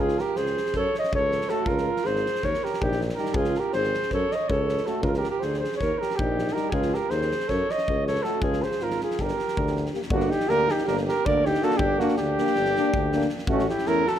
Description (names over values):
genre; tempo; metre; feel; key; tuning
balkan folk, Balkan brass band; 320 BPM (eighths); 9/8; straight; G hungarian minor; A4 = 440 Hz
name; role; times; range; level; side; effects
warm flugelhorn; melody; 0.0-14.2 s; F#4 to Eb5; -26 LUFS; left 1 dB; none
mellow alto saxophone; second line; 0.0-14.2 s; C#4 to C#5; -29 LUFS; right 5 dB; none
warm tuba; bass; 0.0-14.1 s; G1 to F#2; -29 LUFS; left 1 dB; none
huge arena drum kit; percussion; 0.1-14.2 s; kick drum, snare drum; -32 LUFS; left 1 dB; none
clear trombone; accompaniment; 1.5-14.0 s; G3 to Bb3; -32 LUFS; right 5 dB; none
warm French horn; accompaniment; 1.5-14.0 s; C#4 to G4; -32 LUFS; left 9 dB; none
room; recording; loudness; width
light reverb; none; -22 LUFS; side -10 dB against mid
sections
0.0-10.1 A section; 10.1-14.2 B section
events
none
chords
0.0 C#5; 0.7 F#m; 1.7 C#; 2.4 Eb; 3.3 C#5; 4.1 F#m; 5.0 C#maj7(no3); 5.8 Eb; 6.7 C#5; 7.5 F#m; 8.4 C#5; 9.2 Gm; 13.5 A